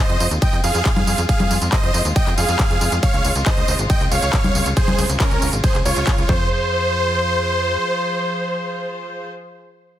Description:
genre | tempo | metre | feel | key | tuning
uplifting trance | 138 BPM | 4/4 | straight | F minor | A4 = 439 Hz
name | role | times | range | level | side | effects
supersaw chords | melody | 0.0-9.3 s | Db4 to G5 | -22 LUFS | right 1 dB | sidechain pumping, digital delay
dark baby grand piano | second line | 0.0-9.3 s | Bb4 to G5 | -30 LUFS | right 1 dB | sidechain pumping, digital delay
rich chamber string section | sustained chords | 0.0-9.3 s | C3 to C5 | -28 LUFS | left 2 dB | sidechain pumping
tight sequencer bass | bass | 0.1-7.8 s | Ab1 to F2 | -22 LUFS | equal | sidechain pumping
big-room dance drum kit | drums | 0.1-6.3 s | congas, handclaps, hi-hat, ride cymbal, tambourine | -24 LUFS | left 1 dB | sidechain pumping on hats, sidechain pumping on cymbals, sidechain pumping on perc
electronic kick drum | drums | 0.4-6.4 s | none | -19 LUFS | equal | none
room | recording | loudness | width
light reverb, digital ambience | dense, heavily limited modern master | -16 LUFS | side -12 dB against mid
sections
0.0-6.5 A section; 6.5-10.0 B section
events
drop 0.0-6.5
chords
0.0 Fm; 3.0 Dbmaj7; 6.3 Fm

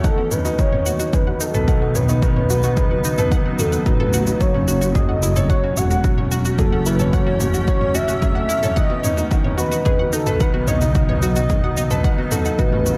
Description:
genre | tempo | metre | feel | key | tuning
piano and strings electronica | 110 BPM | 4/4 | straight | unclear | A4 = 440 Hz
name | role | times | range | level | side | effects
granular cloud pad | sustained chords | 0.0-13.0 s | B2 to D#4 | -30 LUFS | equal | built-in reverb, sidechain pumping
analog pluck | arpeggios | 0.0-13.0 s | C#4 to F#5 | -32 LUFS | equal | chorus, phaser, sidechain pumping, tape echo
felt-muted upright piano | riff | 0.0-13.0 s | D#3 to C#5 | -27 LUFS | equal | tape echo
electronic kick drum | drums | 0.0-12.7 s | none | -21 LUFS | equal | overdrive
electronic shaker and toms | drums | 0.0-13.0 s | none | -27 LUFS | equal | overdrive
warm velvety synth lead | melody | 0.1-13.0 s | A4 to F#5 | -26 LUFS | equal | chorus
warm chamber double bass section | bass | 1.5-13.0 s | E1 to B1 | -24 LUFS | equal | tube saturation, sidechain pumping
room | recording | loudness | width
light reverb | none | -18 LUFS | mono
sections
0.0-13.0 A section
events
none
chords
0.0 B; 4.4 F#m; 8.8 B

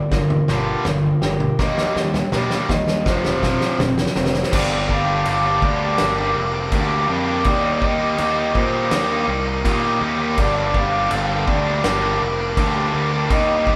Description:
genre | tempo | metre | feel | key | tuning
post-rock | 82 BPM | 4/4 | straight | G minor | A4 = 440 Hz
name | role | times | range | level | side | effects
electric guitar through a small old amp | arpeggios | 0.0-4.5 s | G2 to Bb4 | -33 LUFS | equal | none
vibraphone with medium hard mallets | arpeggios | 0.0-13.8 s | Bb4 to G5 | -28 LUFS | equal | none
distorted electric guitar | riff | 0.0-13.8 s | F2 to G4 | -27 LUFS | equal | overdrive
tight distorted guitar | riff | 0.0-13.8 s | F2 to G4 | -25 LUFS | equal | distortion
fuzz picked electric bass | bass | 0.1-13.8 s | F1 to Bb2 | -27 LUFS | equal | overdrive
loose indie drum kit | drums | 0.1-13.8 s | crash cymbal, kick drum, snare drum, toms | -25 LUFS | equal | none
room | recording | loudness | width
wet stone room reverb, RT60 1.1 s | band playing live in one room | -19 LUFS | mono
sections
0.0-4.5 A section; 4.5-13.8 B section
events
build-up 0.0-4.5; drum fill 0.0-4.5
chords
0.0 Gm7; 1.6 Eb; 3.1 Fsus4; 4.5 Gm7; 7.5 Eb; 10.4 Gm7

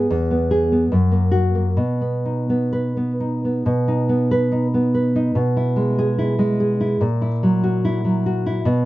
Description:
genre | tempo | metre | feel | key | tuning
romantic piece for solo classical guitar | 62-76 BPM | 2/4 | rubato | B major | A4 = 438 Hz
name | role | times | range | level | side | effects
nylon-string guitar | solo | 0.0-8.9 s | E2 to B4 | -17 LUFS | equal | none
room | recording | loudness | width
light reverb | dark, warm production, nothing above 7.6 kHz | -17 LUFS | side -16 dB against mid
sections
0.0-3.7 A section; 3.7-8.9 B section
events
none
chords
0.1 E; 0.9 F#; 1.8 B; 5.4 E/B; 7.0 F#7/A#

